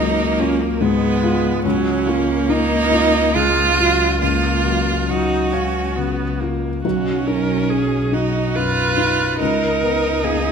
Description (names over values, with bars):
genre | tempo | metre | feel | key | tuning
neoclassical piano and strings | 70 BPM | 3/4 | rubato | F# major | A4 = 442 Hz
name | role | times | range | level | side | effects
clear cello | second line | 0.0-10.5 s | A#3 to F#4 | -19 LUFS | right 4 dB | none
felt-muted upright piano | accompaniment | 0.0-10.5 s | B1 to E#5 | -21 LUFS | left 3 dB | none
warm viola | accompaniment | 0.0-10.5 s | F#3 to B4 | -23 LUFS | right 1 dB | none
warm double bass | bass | 0.0-10.5 s | B1 to C#2 | -25 LUFS | left 2 dB | none
room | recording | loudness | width
moderate concert hall reverb, RT60 1.9 s | minimal, uncompressed stereo recording | -16 LUFS | side -6 dB against mid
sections
0.0-10.5 A section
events
none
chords
0.0 C#7; 1.6 F#maj7/C#; 6.8 B; 9.4 C#5